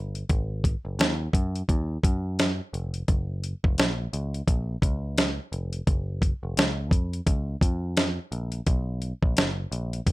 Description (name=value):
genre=indie pop, bedroom pop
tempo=86 BPM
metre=4/4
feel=swing 60% on 16ths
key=F# major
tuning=A4 = 444 Hz
part: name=picked electric bass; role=bass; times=0.0-10.1 s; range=E#1 to F#2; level=-29 LUFS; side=equal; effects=none
part: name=dusty soul sampler-style drum kit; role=drums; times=0.2-10.1 s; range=hi-hat, kick drum, snare drum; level=-23 LUFS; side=equal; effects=none
room=moderate small room reverb, RT60 0.5 s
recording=rough home demo mix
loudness=-24 LUFS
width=side -19 dB against mid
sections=0.0-10.1 A section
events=none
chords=none